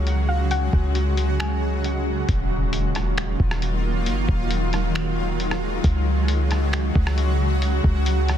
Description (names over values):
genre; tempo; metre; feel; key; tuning
hip hop, atmospheric cloud-rap; 135 BPM; 4/4; half-time; Eb minor; A4 = 444 Hz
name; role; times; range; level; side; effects
soft round pluck; melody; 0.0-1.8 s; Db5 to Ab5; -31 LUFS; left 1 dB; chorus, ping-pong delay
shimmering ambient pad; sustained chords; 0.0-8.4 s; Db3 to Gb4; -25 LUFS; right 1 dB; chorus, built-in reverb, sidechain pumping
concert harp; arpeggios; 0.0-4.5 s; Db4 to Gb5; -36 LUFS; left 6 dB; ping-pong delay
warm 808-style bass; bass; 0.0-8.4 s; Eb1 to Db2; -22 LUFS; equal; none
lo-fi sampler-style drum kit; drums; 0.1-8.4 s; finger snaps, hi-hat, kick drum, rim click; -25 LUFS; equal; soft clipping on snare
impact; sound effects; 2.3-4.1 s; none; -33 LUFS; equal; none
room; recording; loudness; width
digital ambience; dense, heavily limited modern master; -20 LUFS; side -10 dB against mid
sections
0.0-2.3 A section; 2.3-8.4 B section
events
impact 2.3-4.1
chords
0.0 Dbsus4; 2.3 Ebmadd9; 5.8 Dbsus4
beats
0.06 | 0.51 0.95 1.40 1.84 | 2.29 2.73 3.17 3.62 | 4.06 4.51 4.95 5.40 | 5.84 6.29 6.73 7.17 | 7.62 8.06